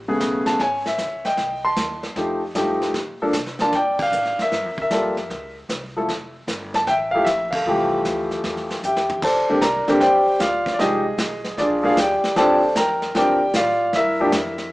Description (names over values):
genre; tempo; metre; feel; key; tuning
jazz piano trio; 153 BPM; 4/4; swing 67% on 8ths; F major, Bb major from 9.2 s; A4 = 440 Hz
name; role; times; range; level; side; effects
upright bass; bass; 0.0-14.7 s; F1 to C3; -38 LUFS; equal; none
warm concert grand piano; melody; 0.1-14.7 s; C#3 to C6; -18 LUFS; equal; none
vintage brush drum kit; drums; 0.2-14.7 s; brushed snare drum, crash cymbal, hi-hat, kick drum, ride cymbal, snare drum, toms; -28 LUFS; equal; none
room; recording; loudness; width
moderate large studio reverb, RT60 1.2 s; band playing live in one room, small speaker sound; -18 LUFS; side -19 dB against mid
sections
0.0-9.2 A section; 9.2-14.7 B section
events
band accent 3.9, 7.5; drum fill 8.8-9.2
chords
0.0 Amaj9; 1.4 F9; 2.9 Bbmaj7; 4.5 Gm9; 5.3 Dbmaj7(#5, no3); 6.1 Fmaj9; 9.2 Bb69; 10.8 Fm9; 11.6 Bb7; 12.4 Ebmaj13; 13.9 Gm7